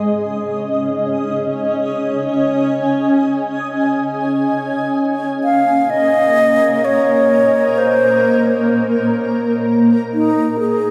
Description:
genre	ambient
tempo	free time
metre	none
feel	none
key	unclear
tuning	A4 = 440 Hz
part	granular cloud pad	sustained chords	0.0-10.9 s	Bb3 to Ab5	-18 LUFS	equal	built-in reverb, shimmer reverb
part	bright wooden-headed alto flute	melody	5.4-10.9 s	Eb4 to F5	-17 LUFS	equal	shimmer reverb, diffuse ambient delay
room	wet huge ambient reverb, RT60 7.7 s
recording	none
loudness	-16 LUFS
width	mono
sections	0.0-10.6 A section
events	none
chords	0.0 Dbsus2; 5.0 Bbm

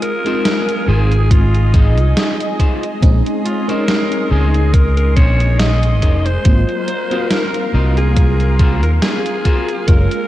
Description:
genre	vaporwave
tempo	70 BPM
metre	4/4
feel	swing 55% on 16ths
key	unclear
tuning	A4 = 442 Hz
part	raspy alto saxophone	melody	0.0-10.3 s	Eb4 to Eb5	-22 LUFS	equal	vintage 12-bit sampler grit, tape echo
part	FM electric piano with soft pad layer	accompaniment	0.0-10.3 s	Gb3 to F5	-22 LUFS	left 1 dB	phaser, ensemble chorus, diffuse ambient delay
part	lush unison pad	sustained chords	0.0-10.3 s	Ab4 to Eb6	-26 LUFS	right 1 dB	chorus, phaser
part	electric guitar at the edge of break-up	riff	0.0-9.7 s	Db4 to Eb5	-28 LUFS	left 2 dB	lush chorus, diffuse ambient delay
part	gated 80s digital drum machine	drums	0.0-10.3 s	hi-hat, snare drum	-21 LUFS	equal	gated reverb, gated reverb snare
part	sustaining fretless electric bass	bass	0.9-10.1 s	F1 to Eb2	-13 LUFS	equal	analog chorus
part	electronic kick drum	drums	1.3-10.1 s	none	-12 LUFS	equal	none
room	moderate lush hall reverb, RT60 2.6 s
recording	dreamy mix soaked in reverb, cassette tape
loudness	-12 LUFS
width	side -14 dB against mid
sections	0.0-10.3 A section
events	none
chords	0.0 Fm7; 3.0 Bbm11; 6.5 Ab13

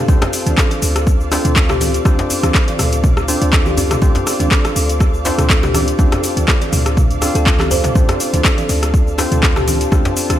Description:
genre	afro house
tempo	122 BPM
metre	4/4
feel	swing 54% on 16ths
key	D minor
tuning	A4 = 435 Hz
part	ethereal airy pad	sustained chords	0.0-10.4 s	A4 to D6	-25 LUFS	right 2 dB	ensemble chorus, built-in reverb, tremolo, sidechain pumping
part	bright tine electric piano	stabs	0.0-10.4 s	C4 to F5	-23 LUFS	left 4 dB	sidechain pumping, dub echo
part	kalimba	arpeggios	0.1-10.4 s	D4 to D5	-22 LUFS	right 1 dB	sidechain pumping, dub echo
part	warm 808-style bass	bass	0.1-10.4 s	D2	-19 LUFS	equal	sidechain pumping
part	deep house drum kit	drums	0.1-10.4 s	handclaps, hi-hat, rim click, shaker, toms	-19 LUFS	left 1 dB	overdrive
part	electronic kick drum	drums	0.1-10.0 s	none	-14 LUFS	equal	overdrive
part	congas	percussion	0.1-10.4 s	none	-27 LUFS	right 3 dB	none
part	djembe	percussion	0.1-10.3 s	none	-26 LUFS	left 1 dB	none
room	digital ambience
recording	none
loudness	-12 LUFS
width	side -12 dB against mid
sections	0.0-10.4 A section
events	none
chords	0.0 Dm7

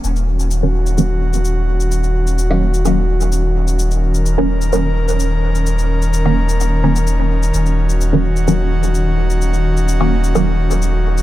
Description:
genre	dub techno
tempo	128 BPM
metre	4/4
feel	straight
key	Eb minor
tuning	A4 = 440 Hz
part	airy breathy pad	sustained chords	0.2-11.2 s	Eb3 to Bb4	-21 LUFS	equal	chorus
part	warm sub bass	bass	0.0-11.2 s	Eb1	-16 LUFS	equal	none
part	cabasa	drums	0.0-11.2 s	none	-29 LUFS	left 5 dB	overdrive, studio reverb
part	filtered dub chord stab	stabs	0.6-10.5 s	Eb3 to Db4	-20 LUFS	right 1 dB	phaser, dub echo
room	digital ambience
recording	none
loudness	-14 LUFS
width	side -14 dB against mid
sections	0.0-11.2 A section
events	none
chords	0.0 Ebm7

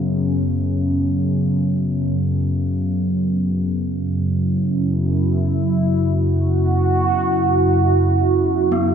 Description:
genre	dark ambient drone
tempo	free time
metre	none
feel	none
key	unclear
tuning	A4 = 438 Hz
part	sweeping resonant pad	sustained chords	0.0-8.9 s	F#2 to A4	-19 LUFS	right 2 dB	chorus
part	gamelan-type bronze metallophone	arpeggios	0.0-0.7, 8.7-8.9 s	B3	-21 LUFS	left 2 dB	none
part	analog drone	drone	0.0-8.9 s	F#2 to C#3	-20 LUFS	left 2 dB	chorus
room	wet cathedral reverb, RT60 5.6 s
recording	none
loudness	-16 LUFS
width	side -8 dB against mid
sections	0.0-8.9 A section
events	none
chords	0.0 F#m; 3.6 Esus2/F#

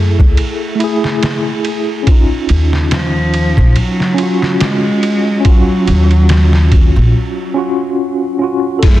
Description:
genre	trip hop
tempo	71 BPM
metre	4/4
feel	swing 56% on 16ths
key	unclear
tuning	A4 = 440 Hz
part	warm cello	melody	0.0-9.0 s	E#3 to A3	-18 LUFS	right 1 dB	tape echo
part	mellow tine electric piano	accompaniment	0.0-9.0 s	A3 to A4	-17 LUFS	equal	medium stereo tremolo, tape echo
part	upright bass	bass	0.0-9.0 s	A#1 to F#2	-11 LUFS	equal	none
part	trip hop sampler-style drum kit	drums	0.2-9.0 s	crash cymbal, kick drum, ride cymbal, snare drum	-14 LUFS	equal	vintage 12-bit sampler grit
room	little or no reverb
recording	dense, heavily limited modern master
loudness	-10 LUFS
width	side -14 dB against mid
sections	0.0-8.8 A section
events	break 7.1-8.8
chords	0.0 F#m7 (rootless); 2.1 D#m7

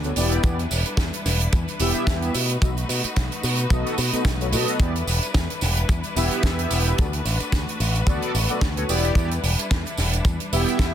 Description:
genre	nu-disco, nu disco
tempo	110 BPM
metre	4/4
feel	swing 56% on 16ths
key	E minor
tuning	A4 = 442 Hz
part	mellow synth brass	accompaniment	0.0-10.9 s	B3 to E5	-26 LUFS	equal	chorus, sidechain pumping, digital delay
part	clear studio string section	sustained chords	0.0-10.9 s	G3 to B4	-31 LUFS	left 2 dB	sidechain pumping
part	picked electric bass with an envelope filter	bass	0.0-10.9 s	E1 to B2	-24 LUFS	equal	none
part	tight funk drum kit	drums	0.0-10.9 s	hi-hat, snare drum	-28 LUFS	right 4 dB	none
part	tambourine	percussion	0.0-10.9 s	none	-37 LUFS	right 2 dB	none
part	kick drum	drums	0.4-10.9 s	none	-23 LUFS	equal	none
room	small room ambience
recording	dense, heavily limited modern master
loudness	-20 LUFS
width	side -10 dB against mid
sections	0.0-10.9 A section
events	none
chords	0.2 Em7; 2.3 B7; 4.8 Em7; 7.0 Bm7; 8.9 Em7

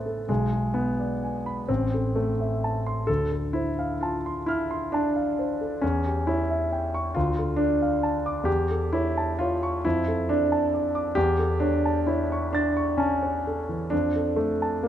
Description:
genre	classical, romantic nocturne for solo piano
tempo	41-47 BPM (dotted quarters)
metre	12/8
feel	rubato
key	unclear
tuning	A4 = 441 Hz
part	warm concert grand piano	solo	0.0-14.9 s	A1 to A6	-23 LUFS	equal	none
room	moderate scoring stage reverb, RT60 1.9 s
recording	close, detailed microphones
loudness	-23 LUFS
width	side -10 dB against mid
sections	0.0-14.9 A section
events	none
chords	0.3 G#dim/B; 1.7 Am; 3.1 Dm7; 5.8 C#dim/E; 7.2 Dm; 8.5 A/E; 9.8 Dm/F; 11.2 A/E; 13.9 Dm/F

